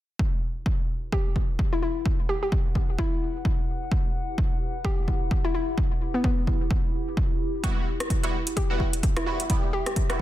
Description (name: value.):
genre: bass house.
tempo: 129 BPM.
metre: 4/4.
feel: swing 57% on 16ths.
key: E minor.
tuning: A4 = 440 Hz.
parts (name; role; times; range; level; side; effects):
electronic kick drum; drums; 0.2-10.1 s; none; -24 LUFS; equal; overdrive.
warbly tape-like pad; texture; 1.5-10.2 s; E4 to F#5; -36 LUFS; equal; chorus, built-in reverb, sidechain pumping.
hollow square pluck; melody; 1.1-9.9 s; B3 to G4; -30 LUFS; left 3 dB; chorus, ping-pong delay.
band-passed chord stab; stabs; 7.6-10.2 s; G3 to G4; -31 LUFS; right 2 dB; phaser, ensemble chorus, sidechain pumping, ping-pong delay.
house drum kit; drums; 7.6-10.2 s; hi-hat, rim click; -31 LUFS; equal; overdrive.
room: digital ambience.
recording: dense, heavily limited modern master.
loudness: -23 LUFS.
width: side -14 dB against mid.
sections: 0.2-10.2 A section.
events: fade-in on ambient pad 0.2-10.2.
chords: 0.2 Emadd9.